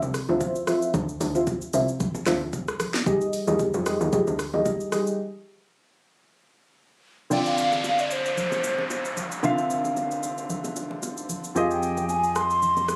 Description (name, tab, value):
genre	amapiano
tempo	113 BPM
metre	4/4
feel	swing 55% on 16ths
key	unclear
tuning	A4 = 441 Hz
part	tight log drum bass	bass	0.0-4.6 s	C2 to F2	-31 LUFS	equal	none
part	afro-pop drum kit	drums	0.0-13.0 s	hi-hat, kick drum, rim click, shaker, snare drum	-34 LUFS	equal	none
part	bongos and congas	percussion	0.0-13.0 s	none	-38 LUFS	equal	none
part	deep mellow chord stab	stabs	0.3-5.2 s	F4 to E5	-27 LUFS	equal	chorus, phaser, slapback echo
part	mellow hollow concert flute	melody	7.3-13.0 s	C5 to C6	-27 LUFS	equal	slapback echo
part	warm baby grand piano	accompaniment	7.3-13.0 s	D3 to F5	-30 LUFS	equal	none
part	downlifter	sound effects	7.3-11.6 s	none	-35 LUFS	equal	none
part	organ-like FM bass	bass	11.6-13.0 s	F2	-36 LUFS	equal	none
room	light reverb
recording	recorded on a phone in the room, club reverb, compression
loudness	-25 LUFS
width	mono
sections	0.0-7.3 A section; 7.3-13.0 B section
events	drop 0.0-7.3; break 5.2-7.3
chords	0.0 Dm9; 3.1 Fm9; 7.3 Dm9; 11.6 Fm9